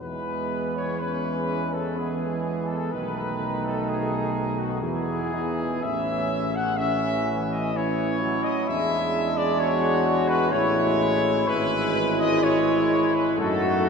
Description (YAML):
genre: classical, hymn-like piece for brass band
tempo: 63 BPM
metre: 3/4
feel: uneven beats, rubato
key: E major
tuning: A4 = 442 Hz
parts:
  - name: dark trumpet section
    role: melody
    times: 0.0-13.9 s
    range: F#4 to F#5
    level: -27 LUFS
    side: left 3 dB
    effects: none
  - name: mellow French horn section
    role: second line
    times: 0.0-13.9 s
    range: G#3 to E4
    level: -30 LUFS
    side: right 3 dB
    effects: none
  - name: bright trombone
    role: accompaniment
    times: 0.0-13.9 s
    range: D#3 to A3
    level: -30 LUFS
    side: right 3 dB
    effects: none
  - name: bright trombone section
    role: accompaniment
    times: 0.0-13.9 s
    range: B3 to F#4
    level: -30 LUFS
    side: left 1 dB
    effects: none
  - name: mellow tuba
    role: bass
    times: 0.0-13.9 s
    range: G#1 to F#2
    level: -29 LUFS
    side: equal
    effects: none
room: wet cathedral reverb, RT60 4.6 s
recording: minimal, uncompressed stereo recording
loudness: -22 LUFS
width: side -5 dB against mid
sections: 0.0-13.9 A section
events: none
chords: 0.0 E; 2.9 B7; 4.8 E; 5.8 A; 8.7 E7; 10.5 Amaj7; 11.5 E/G#; 13.4 D#dim/F#